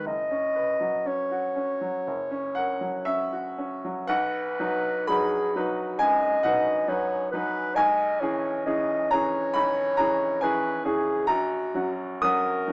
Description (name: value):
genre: classical, romantic duo for clarinet and grand piano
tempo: 58-69 BPM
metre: 4/4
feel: rubato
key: B major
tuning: A4 = 439 Hz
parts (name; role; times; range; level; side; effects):
- mellow clarinet; melody; 0.0-12.7 s; F#4 to D#5; -26 LUFS; equal; none
- bright baby grand piano; accompaniment; 0.0-12.7 s; F#1 to D#6; -25 LUFS; equal; none
room: light reverb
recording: small speaker sound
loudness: -23 LUFS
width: side -28 dB against mid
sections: 0.0-4.1 A section; 4.1-12.7 B section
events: none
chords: 0.1 F#sus4; 2.1 F#; 4.1 B; 7.8 C#m7/B; 11.3 F#/A#